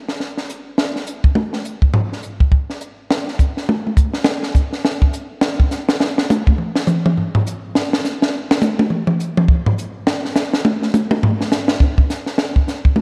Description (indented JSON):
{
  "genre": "jazz",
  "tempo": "206 BPM",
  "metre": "4/4",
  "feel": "swing 61% on 8ths",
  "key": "none",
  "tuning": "none",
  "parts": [
    { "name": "compact cocktail drum kit", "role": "drums", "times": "0.1-13.0 s", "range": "hi-hat, kick drum, snare drum, toms", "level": "-18 LUFS", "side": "equal", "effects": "none" }
  ],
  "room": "moderate lush hall reverb, RT60 1.8 s",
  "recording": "dreamy mix soaked in reverb",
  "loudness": "-18 LUFS",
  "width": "mono",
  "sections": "0.0-12.4 A section",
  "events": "drum solo 0.0-12.4",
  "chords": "none"
}